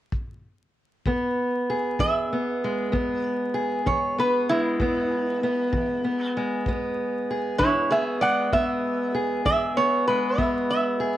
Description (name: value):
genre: acoustic country blues, solo or duo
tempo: 64 BPM (dotted quarters)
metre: 12/8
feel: straight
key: E major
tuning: A4 = 440 Hz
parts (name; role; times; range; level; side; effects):
- kick drum; drums; 0.1-10.5 s; none; -30 LUFS; equal; none
- fingerpicked steel-string acoustic guitar; accompaniment; 1.1-11.2 s; E2 to G#4; -25 LUFS; equal; none
- lap resonator guitar; melody; 2.0-11.2 s; E4 to F#5; -24 LUFS; right 1 dB; slapback echo
room: moderate spring reverb, RT60 2.5 s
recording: 1960s-style stereo, vinyl crackle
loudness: -22 LUFS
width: side -12 dB against mid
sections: 0.0-1.1 A section; 1.1-11.2 B section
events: resonator guitar played with a steel bar solo 1.1-11.2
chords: 0.0 N.C.; 1.1 E